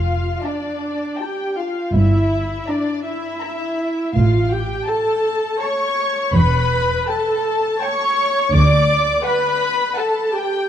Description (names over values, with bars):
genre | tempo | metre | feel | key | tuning
classical, slow romantic movement for string orchestra | 82 BPM | 3/4 | rubato | D major from 6.3 s | A4 = 441 Hz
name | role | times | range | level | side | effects
dark studio violin section | second line | 0.0-10.7 s | D5 to D6 | -23 LUFS | left 3 dB | none
dark studio viola section | accompaniment | 0.0-10.7 s | D4 to D5 | -20 LUFS | equal | none
dark studio cello section | bass | 0.0-9.1 s | D2 to A2 | -20 LUFS | right 1 dB | none
warm studio double bass section | bass | 0.0-9.1 s | E1 to D2 | -20 LUFS | right 1 dB | none
dark studio violin section | melody | 0.4-10.5 s | F#5 to Bb5 | -33 LUFS | left 5 dB | none
room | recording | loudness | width
moderate concert hall reverb, RT60 2.1 s | vinyl crackle | -16 LUFS | side -10 dB against mid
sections
0.0-10.7 A section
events
none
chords
0.0 Dm/F; 1.9 Edim/G; 4.2 A; 6.3 A7/E; 8.5 D